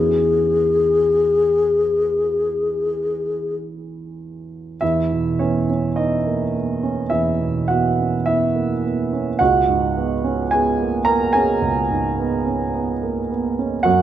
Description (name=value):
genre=classical, impressionist duo for alto flute and grand piano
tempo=48-55 BPM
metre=4/4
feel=rubato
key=E lydian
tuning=A4 = 435 Hz
part: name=mellow wooden-headed alto flute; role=melody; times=0.0-3.6 s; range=G#4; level=-17 LUFS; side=left 3 dB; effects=none
part: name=dark grand piano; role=accompaniment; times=0.0-14.0 s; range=C#2 to A#5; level=-19 LUFS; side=right 3 dB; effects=none
room=moderate recital hall reverb, RT60 1.4 s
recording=close, detailed microphones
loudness=-17 LUFS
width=side -11 dB against mid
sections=0.0-4.8 A section; 4.8-14.0 A section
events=none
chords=0.0 E69; 4.8 E5; 9.4 C#7sus4